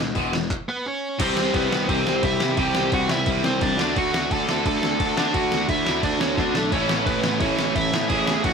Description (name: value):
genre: punk rock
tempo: 174 BPM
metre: 4/4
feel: straight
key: unclear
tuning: A4 = 440 Hz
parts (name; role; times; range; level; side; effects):
- distorted electric guitar; riff; 0.0-8.5 s; A2 to G4; -28 LUFS; left 7 dB; overdrive
- overdriven semi-hollow guitar; riff; 0.0-8.5 s; E2 to D4; -26 LUFS; right 4 dB; none
- fuzz picked electric bass; bass; 0.0-8.5 s; E1 to D3; -29 LUFS; equal; overdrive
- boom bap sampler-style drum kit; drums; 0.2-8.5 s; crash cymbal, handclaps, hi-hat, kick drum, snare drum; -26 LUFS; equal; none
- high-gain lead guitar; melody; 0.7-8.5 s; B3 to A5; -25 LUFS; right 2 dB; distortion
- fuzz guitar; riff; 1.2-8.5 s; A2 to G4; -29 LUFS; equal; none
room: moderate studio reverb, RT60 0.8 s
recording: band playing live in one room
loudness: -20 LUFS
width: side -6 dB against mid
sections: 0.0-1.2 A section; 1.2-8.5 B section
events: stop 0.5-1.2; drum fill 6.4-6.7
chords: 0.0 E; 1.2 C; 3.8 D; 6.7 A